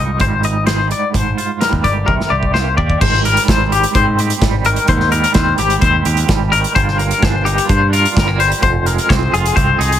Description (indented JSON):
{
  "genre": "math rock and midwest emo",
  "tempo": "128 BPM",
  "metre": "4/4",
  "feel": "straight",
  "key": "unclear",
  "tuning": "A4 = 442 Hz",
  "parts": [
    { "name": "twangy electric guitar", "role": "accompaniment", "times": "0.0-10.0 s", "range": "F2 to Bb4", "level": "-20 LUFS", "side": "right 10 dB", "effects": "tremolo" },
    { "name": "twangy electric guitar", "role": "arpeggios", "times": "0.0-10.0 s", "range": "G4 to Eb5", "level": "-16 LUFS", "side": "left 6 dB", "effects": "tremolo" },
    { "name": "growling picked electric bass", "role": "bass", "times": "0.0-10.0 s", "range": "F1 to Ab2", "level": "-17 LUFS", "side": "equal", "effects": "overdrive" },
    { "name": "loose indie drum kit", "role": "drums", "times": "0.2-10.0 s", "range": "crash cymbal, hi-hat, kick drum, snare drum, toms", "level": "-17 LUFS", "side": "equal", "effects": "none" }
  ],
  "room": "little or no reverb",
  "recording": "faint mains hum",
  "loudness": "-12 LUFS",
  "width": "side -10 dB against mid",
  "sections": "0.0-3.0 A section; 3.0-10.0 B section",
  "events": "drum fill 2.1-3.0",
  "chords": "0.0 Fm9/Ab; 1.1 Abmaj9; 2.1 Cm7; 3.0 Abmaj7; 6.8 Gm7; 8.6 Fm7",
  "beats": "0.20 0.67 | 1.14 1.61 2.08 2.54 | 3.01 3.48 3.95 4.42 | 4.88 5.35 5.82 6.29 | 6.75 7.22 7.69 8.15 | 8.62 9.09 9.56"
}